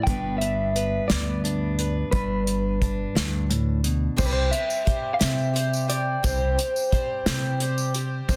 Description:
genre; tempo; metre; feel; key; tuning
indie folk with a building arrangement; 58 BPM (dotted quarters); 6/8; straight; C major; A4 = 440 Hz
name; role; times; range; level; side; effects
electric guitar through a small old amp; melody; 0.0-8.4 s; B4 to G5; -30 LUFS; equal; harmonic tremolo, plate reverb, tape echo
fingerpicked steel-string acoustic guitar; accompaniment; 0.0-4.2 s; G2 to B4; -30 LUFS; equal; none
upright bass; bass; 0.1-8.4 s; G1 to C3; -28 LUFS; equal; none
unplugged drum kit; drums; 0.1-8.4 s; crash cymbal, hi-hat, kick drum, snare drum; -28 LUFS; equal; none
picked twelve-string acoustic guitar; accompaniment; 4.2-8.4 s; C3 to C5; -34 LUFS; equal; plate reverb
tambourine; percussion; 4.2-8.4 s; none; -38 LUFS; equal; none
room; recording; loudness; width
light reverb; dense, heavily limited modern master; -24 LUFS; mono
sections
0.0-4.2 A section; 4.2-8.4 B section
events
none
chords
0.1 G; 4.2 C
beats
| 0.06 1.09 | 2.12 3.15 | 4.18 5.21 | 6.24 7.27 | 8.29

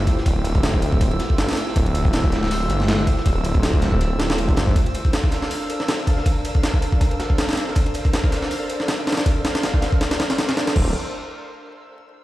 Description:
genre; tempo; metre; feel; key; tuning
drum and bass, jungle; 160 BPM; 4/4; swing 55% on 16ths; D minor; A4 = 440 Hz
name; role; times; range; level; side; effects
soft string machine; sustained chords; 0.0-10.9 s; A3 to F5; -27 LUFS; equal; ensemble chorus
detuned saw bass; bass; 0.0-4.7, 10.8-10.9 s; D1 to G1; -22 LUFS; equal; none
drifting glass-harmonics texture; texture; 0.0-10.8 s; E6; -35 LUFS; right 1 dB; chorus, built-in reverb
crunchy breakbeat drum kit; drums; 0.1-10.5 s; hi-hat, snare drum; -35 LUFS; left 1 dB; none
jungle sampler-style drum kit; drums; 0.1-10.8 s; crash cymbal, hi-hat, kick drum, ride cymbal, snare drum; -19 LUFS; equal; overdrive
room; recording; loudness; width
light reverb; played on a big sound system in a bare room, stone room reverb, vinyl crackle; -18 LUFS; side -16 dB against mid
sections
0.0-10.8 A section; 10.8-12.2 B section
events
none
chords
0.0 Dm11; 4.8 Bbmaj9#11/D; 10.8 Dm11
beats
| 0.26 0.64 1.01 1.39 | 1.76 2.13 2.51 2.88 | 3.26 3.63 4.01 4.38 | 4.76 5.13 5.51 5.88 | 6.26 6.63 7.01 7.38 | 7.76 8.13 8.51 8.88 | 9.26 9.63 10.01 10.38 | 10.76

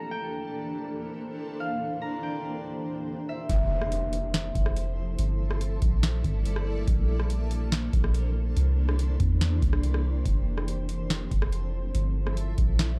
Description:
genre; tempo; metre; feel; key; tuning
hip hop, atmospheric cloud-rap; 142 BPM; 4/4; half-time; unclear; A4 = 440 Hz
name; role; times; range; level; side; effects
concert harp; melody; 0.0-5.0 s; E5 to Bb5; -38 LUFS; equal; low-pass filter, digital delay
granular cloud pad; sustained chords; 0.0-13.0 s; E3 to D5; -37 LUFS; equal; built-in reverb, sidechain pumping, low-pass filter
soft 808-style bass; bass; 3.5-13.0 s; F1 to E2; -29 LUFS; equal; none
booming analog drum machine; drums; 3.5-12.9 s; hi-hat, kick drum, rim click, snare drum; -30 LUFS; equal; none
impact; sound effects; 3.5-5.2 s; none; -41 LUFS; equal; none
room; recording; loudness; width
little or no reverb; dark, warm production; -28 LUFS; mono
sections
0.0-3.5 A section; 3.5-13.0 B section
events
filter sweep 0.0-3.5; impact 3.5-5.2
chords
0.1 Bbmaj9#11; 1.8 C9; 3.5 Fmaj7; 5.2 Gm69; 6.9 Bbmaj9#11; 8.6 C9; 10.3 Fmaj7; 11.9 Gm69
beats
| 0.12 0.54 0.96 1.38 | 1.80 2.23 2.65 3.07 | 3.50 3.92 4.34 4.76 | 5.19 5.61 6.03 6.45 | 6.88 7.30 7.72 8.14 | 8.57 8.99 9.41 9.83 | 10.26 10.68 11.10 11.52 | 11.95 12.37 12.79

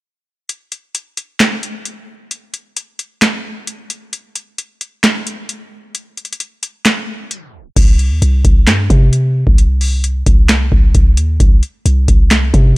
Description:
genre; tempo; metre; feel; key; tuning
hip hop, trap; 132 BPM; 4/4; half-time; C minor; A4 = 440 Hz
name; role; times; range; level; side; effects
booming analog drum machine; drums; 0.5-12.7 s; crash cymbal, handclaps, hi-hat, kick drum, snare drum; -12 LUFS; equal; none
warm 808-style bass; bass; 7.8-12.8 s; C2 to C3; -12 LUFS; equal; none
room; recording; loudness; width
digital ambience; tape stop; -10 LUFS; side -21 dB against mid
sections
0.0-7.8 A section; 7.8-12.8 B section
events
break 0.0-0.5; kick muted 6.9-7.8; tape stop 7.3-7.8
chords
none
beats
0.04 | 0.49 0.95 1.40 1.86 | 2.31 2.77 3.22 3.67 | 4.13 4.58 5.04 5.49 | 5.95 6.40 6.86 7.31 | 7.76 8.22 8.67 9.13 | 9.58 10.04 10.49 10.95 | 11.40 11.86 12.31 12.77

